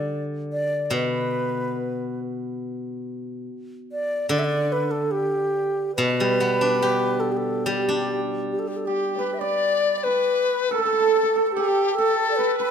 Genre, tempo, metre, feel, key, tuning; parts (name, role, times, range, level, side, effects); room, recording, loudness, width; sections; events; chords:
chinese traditional, Chinese chamber ensemble; 71 BPM; 2/4; straight; G gong mode; A4 = 441 Hz
breathy bright low xiao; melody; 0.0-12.7 s; G4 to E5; -24 LUFS; right 1 dB
steel-string zither; accompaniment; 0.0-10.2 s; B2 to G4; -26 LUFS; left 1 dB
hammered dulcimer; second line; 8.9-12.7 s; G4 to D5; -24 LUFS; right 6 dB
large dizi; second line; 8.9-12.7 s; G4 to E5; -24 LUFS; left 7 dB
light reverb; close, detailed microphones; -21 LUFS; side -7 dB against mid
0.0-9.4 A section; 9.4-12.7 B section